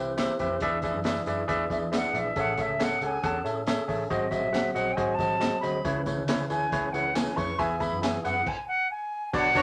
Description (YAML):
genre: uptempo 1960s-style soul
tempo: 138 BPM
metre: 4/4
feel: straight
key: unclear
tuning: A4 = 444 Hz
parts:
  - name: overdriven tine electric piano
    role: accompaniment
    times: 0.0-9.6 s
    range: G#2 to F#5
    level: -31 LUFS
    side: equal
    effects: none
  - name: tonewheel organ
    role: sustained chords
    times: 0.0-9.6 s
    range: D3 to C#5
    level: -39 LUFS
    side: equal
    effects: slow rotary speaker
  - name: vintage muted picked electric bass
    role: bass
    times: 0.0-9.6 s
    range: F#1 to A2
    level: -40 LUFS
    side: equal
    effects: none
  - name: crunchy breakbeat drum kit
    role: drums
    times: 0.2-9.6 s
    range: crash cymbal, hi-hat, kick drum, snare drum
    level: -36 LUFS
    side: equal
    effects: none
  - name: congas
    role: percussion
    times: 0.2-8.1 s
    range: none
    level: -46 LUFS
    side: equal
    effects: none
  - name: handclaps and tambourine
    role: percussion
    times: 0.2-9.6 s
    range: none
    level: -45 LUFS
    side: equal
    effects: none
  - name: silver concert flute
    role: melody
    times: 1.7-9.6 s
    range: D#5 to C#6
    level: -31 LUFS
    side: equal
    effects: none
  - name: clear saxophone section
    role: second line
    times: 9.5-9.6 s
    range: D4 to C#5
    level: -24 LUFS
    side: equal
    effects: none
room: wet studio ambience, RT60 0.5 s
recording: none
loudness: -28 LUFS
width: mono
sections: 0.0-9.3 A section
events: flute solo 0.0-9.3; stop 8.5-9.3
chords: 0.0 Cmaj7; 0.6 E7; 2.4 Amaj7; 4.1 G#7; 5.9 C#m7; 7.6 E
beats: 0.19 | 0.62 1.06 1.50 1.93 | 2.37 2.80 3.24 3.67 | 4.11 4.55 4.98 5.42 | 5.85 6.29 6.72 7.16 | 7.59 8.03 8.46 8.90 | 9.33